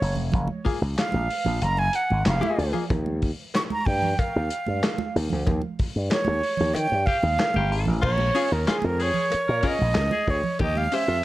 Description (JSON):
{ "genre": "funk", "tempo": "94 BPM", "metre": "4/4", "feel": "straight", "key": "Bb dorian", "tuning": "A4 = 440 Hz", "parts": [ { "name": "breathy concert flute", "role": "melody", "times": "0.0-11.2 s", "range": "Ab4 to Db6", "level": "-26 LUFS", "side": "right 2 dB", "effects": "plate reverb, tape echo" }, { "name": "slap bass with an envelope filter", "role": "bass", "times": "0.0-11.2 s", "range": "F1 to Eb3", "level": "-25 LUFS", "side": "equal", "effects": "none" }, { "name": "warm soul drum kit", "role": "drums", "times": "0.0-11.1 s", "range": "crash cymbal, handclaps, hi-hat, kick drum, snare drum", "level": "-28 LUFS", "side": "left 1 dB", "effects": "none" }, { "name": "congas", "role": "percussion", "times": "0.2-10.9 s", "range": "none", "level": "-33 LUFS", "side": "right 5 dB", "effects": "none" }, { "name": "archtop guitar, miked and amplified", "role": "accompaniment", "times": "0.6-2.8, 8.3-11.1 s", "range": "Bb3 to C5", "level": "-28 LUFS", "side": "left 5 dB", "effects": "plate reverb" }, { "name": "cowbell", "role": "percussion", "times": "2.9-10.7 s", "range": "none", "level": "-35 LUFS", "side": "left 4 dB", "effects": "none" }, { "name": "raspy tenor saxophone", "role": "second line", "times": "7.1-11.2 s", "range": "F4 to Bb4", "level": "-31 LUFS", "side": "left 4 dB", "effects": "plate reverb" } ], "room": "light reverb", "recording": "cassette tape", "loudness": "-21 LUFS", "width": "side -16 dB against mid", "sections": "0.0-8.0 A section; 8.0-11.2 B section", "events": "band accent 5.5-8.0; flute solo 8.0-11.2", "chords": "0.0 Gbmaj9; 2.9 Ebadd9; 8.0 Bbm7; 10.6 Eb13" }